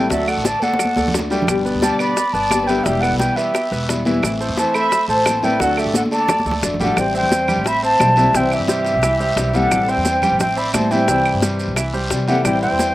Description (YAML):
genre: latin, Cuban son and guajira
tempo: 175 BPM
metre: 4/4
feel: straight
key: unclear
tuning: A4 = 439 Hz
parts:
  - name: mellow silver concert flute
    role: melody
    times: 0.0-12.9 s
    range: E5 to B5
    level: -18 LUFS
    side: equal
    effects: none
  - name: dark studio violin section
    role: second line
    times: 0.0-12.9 s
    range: G4 to E5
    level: -27 LUFS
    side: right 1 dB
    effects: slapback echo
  - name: nylon-string guitar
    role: accompaniment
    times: 0.0-12.9 s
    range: B2 to G4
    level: -22 LUFS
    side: left 2 dB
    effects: slapback echo
  - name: bright concert grand piano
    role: arpeggios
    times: 0.0-12.9 s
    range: E3 to G5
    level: -25 LUFS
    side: right 1 dB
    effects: slapback echo
  - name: upright bass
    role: bass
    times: 0.0-12.9 s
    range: E1 to C3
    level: -24 LUFS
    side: right 1 dB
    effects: none
  - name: bongos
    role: percussion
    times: 0.1-12.9 s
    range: none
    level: -24 LUFS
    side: left 4 dB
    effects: none
  - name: congas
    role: percussion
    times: 0.1-12.9 s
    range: none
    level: -25 LUFS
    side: right 1 dB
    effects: none
  - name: guiro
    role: percussion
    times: 0.1-12.9 s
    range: none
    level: -31 LUFS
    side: equal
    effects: none
  - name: maracas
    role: percussion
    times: 0.1-12.9 s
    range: none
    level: -29 LUFS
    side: right 6 dB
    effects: none
  - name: claves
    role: percussion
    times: 0.3-12.6 s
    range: none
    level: -26 LUFS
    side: right 5 dB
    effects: none
room: little or no reverb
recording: recorded outdoors, with no room sound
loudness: -15 LUFS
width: side -16 dB against mid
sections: 0.0-7.0 A section; 7.0-12.9 B section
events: drum fill 0.6-1.5, 5.9-7.0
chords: 0.1 D; 1.5 G; 2.9 Em; 4.2 Am; 5.6 D; 7.0 Am7; 8.3 C; 9.7 Am7; 11.1 C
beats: | 0.11 0.45 0.80 1.14 | 1.48 1.83 2.17 2.51 | 2.86 3.20 3.54 3.88 | 4.23 4.57 4.91 5.26 | 5.60 5.94 6.29 6.63 | 6.97 7.31 7.66 8.00 | 8.34 8.68 9.03 9.37 | 9.71 10.05 10.40 10.74 | 11.08 11.43 11.77 12.11 | 12.45 12.80